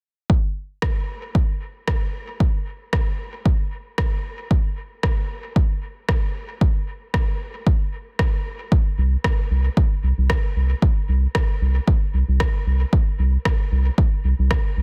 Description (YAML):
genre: dub techno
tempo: 114 BPM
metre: 4/4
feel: swing 55% on 16ths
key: unclear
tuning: A4 = 440 Hz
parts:
  - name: electronic kick drum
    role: drums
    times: 0.3-14.6 s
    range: none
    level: -22 LUFS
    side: equal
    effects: none
  - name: electronic rim click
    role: drums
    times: 0.8-14.6 s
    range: none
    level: -32 LUFS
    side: equal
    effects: soft clipping on snare, dub echo
  - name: round analog bass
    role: bass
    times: 9.0-14.8 s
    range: C2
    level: -20 LUFS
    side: equal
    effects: sidechain pumping
room: little or no reverb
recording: dense, heavily limited modern master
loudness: -22 LUFS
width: mono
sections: 0.3-8.7 A section; 8.7-14.8 B section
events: none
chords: none